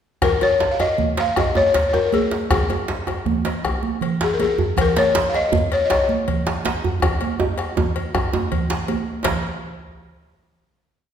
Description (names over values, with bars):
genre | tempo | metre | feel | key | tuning
west african traditional, West African drum ensemble | 107 BPM (dotted quarters) | 12/8 | straight | Db major pentatonic | A4 = 440 Hz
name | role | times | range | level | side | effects
balafon | melody | 0.2-8.8 s | Ab4 to F5 | -19 LUFS | left 3 dB | none
bombo | percussion | 0.2-9.4 s | none | -26 LUFS | left 2 dB | none
congas | percussion | 0.2-9.4 s | none | -26 LUFS | right 6 dB | none
cowbell | percussion | 0.2-9.4 s | none | -31 LUFS | left 6 dB | none
djembe | percussion | 0.2-9.4 s | none | -31 LUFS | left 2 dB | none
djembe | percussion | 0.2-9.4 s | none | -24 LUFS | right 3 dB | none
room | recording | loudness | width
wet recital hall reverb, RT60 1.5 s | recorded in a church or concert hall | -18 LUFS | side -8 dB against mid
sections
0.2-9.3 A section; 9.3-11.1 final hit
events
drum fill 7.0-9.3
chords
none